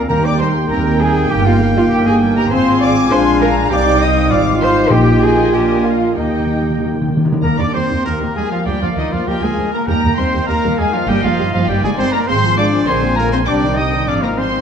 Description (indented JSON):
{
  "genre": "quick classical-period movement for symphony orchestra",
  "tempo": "99 BPM",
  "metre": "2/4",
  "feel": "rubato",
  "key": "Eb major",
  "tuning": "A4 = 440 Hz",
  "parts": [
    { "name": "muted studio violin section", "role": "melody", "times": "0.0-14.6 s", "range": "Eb5 to Eb6", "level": "-24 LUFS", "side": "left 3 dB", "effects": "none" },
    { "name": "dark clarinet", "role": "second line", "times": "0.0-7.1 s", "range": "Bb3 to G4", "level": "-19 LUFS", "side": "equal", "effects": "none" },
    { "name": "muted studio viola section", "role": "accompaniment", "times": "0.0-14.6 s", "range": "D3 to Bb4", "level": "-21 LUFS", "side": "right 2 dB", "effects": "none" },
    { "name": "mellow French horn section", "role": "sustained chords", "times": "0.0-14.6 s", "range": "Eb3 to F4", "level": "-22 LUFS", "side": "left 5 dB", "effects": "none" },
    { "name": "bright trumpet", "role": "stabs", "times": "0.0-14.6 s", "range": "Eb4 to Ab5", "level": "-23 LUFS", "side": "right 1 dB", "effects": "none" },
    { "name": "muted studio double bass section", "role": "bass", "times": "0.0-14.6 s", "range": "G1 to Eb2", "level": "-20 LUFS", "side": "right 3 dB", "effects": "none" },
    { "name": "flute section", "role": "second line", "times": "0.1-14.5 s", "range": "Eb5 to Eb6", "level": "-25 LUFS", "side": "equal", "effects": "none" },
    { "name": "muted studio violin section", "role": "second line", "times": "0.1-14.6 s", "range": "Bb3 to Eb6", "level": "-25 LUFS", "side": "left 5 dB", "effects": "none" },
    { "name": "muted studio cello section", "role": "bass", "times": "0.1-14.4 s", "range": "Eb3 to Eb5", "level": "-20 LUFS", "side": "right 2 dB", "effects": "none" },
    { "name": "timpani", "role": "percussion", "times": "0.1-1.0, 4.9-10.7 s", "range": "Bb2 to Eb3", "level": "-20 LUFS", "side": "left 1 dB", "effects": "none" },
    { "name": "bright oboe", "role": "second line", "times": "8.1-14.5 s", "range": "Bb4 to Ab5", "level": "-27 LUFS", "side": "equal", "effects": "none" }
  ],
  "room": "wet scoring stage reverb, RT60 1.6 s",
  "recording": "dark, warm production",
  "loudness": "-12 LUFS",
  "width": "side -7 dB against mid",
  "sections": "0.0-7.4 A section; 7.4-14.6 A section",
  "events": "timpani fill 6.2-7.4",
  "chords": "0.1 Eb; 1.3 Eb/G; 2.5 Fm/Ab; 3.1 Bb7; 3.7 Cm; 4.3 Fm7/Ab; 4.9 Eb/Bb; 5.5 Bb7; 6.2 Eb; 8.7 Bb/D; 9.9 Eb; 11.1 Eb/G; 12.3 Fm/Ab; 12.9 Bb7; 13.5 Cm; 14.1 Fm7/Ab",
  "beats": "| 0.10 0.70 | 1.31 1.91 | 2.51 3.11 | 3.71 4.31 | 4.91 5.53 | 6.16 6.80 | 7.43 8.05 | 8.67 9.27 | 9.88 10.48 | 11.09 11.69 | 12.28 12.88 | 13.47 14.07"
}